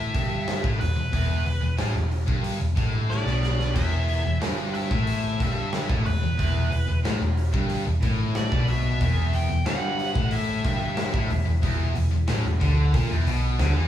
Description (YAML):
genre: hard rock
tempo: 92 BPM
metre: 4/4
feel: straight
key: E minor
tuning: A4 = 438 Hz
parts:
  - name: nasal lead guitar with a parked wah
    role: melody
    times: 0.0-13.6 s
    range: B4 to G5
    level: -32 LUFS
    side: equal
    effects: overdrive
  - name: overdriven semi-hollow guitar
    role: riff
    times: 0.0-13.9 s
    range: E2 to E3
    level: -32 LUFS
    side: right 3 dB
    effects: none
  - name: scooped high-gain guitar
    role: riff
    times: 0.0-13.9 s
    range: E2 to E3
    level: -33 LUFS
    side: left 6 dB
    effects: distortion
  - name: hollow-body short-scale picked electric bass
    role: bass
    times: 0.0-13.9 s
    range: E1 to E2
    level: -25 LUFS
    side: equal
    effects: none
  - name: big rock drum kit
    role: drums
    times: 0.1-13.7 s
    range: crash cymbal, hi-hat, kick drum, snare drum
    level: -27 LUFS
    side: equal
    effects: none
  - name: raw garage guitar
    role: riff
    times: 3.7-13.9 s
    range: E2 to E3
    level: -33 LUFS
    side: left 2 dB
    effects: overdrive
room: wet studio reverb, RT60 0.9 s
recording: band playing live in one room, small room ambience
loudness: -22 LUFS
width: side -11 dB against mid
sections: 0.0-13.9 A section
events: drum fill 3.1-3.8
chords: 0.0 Em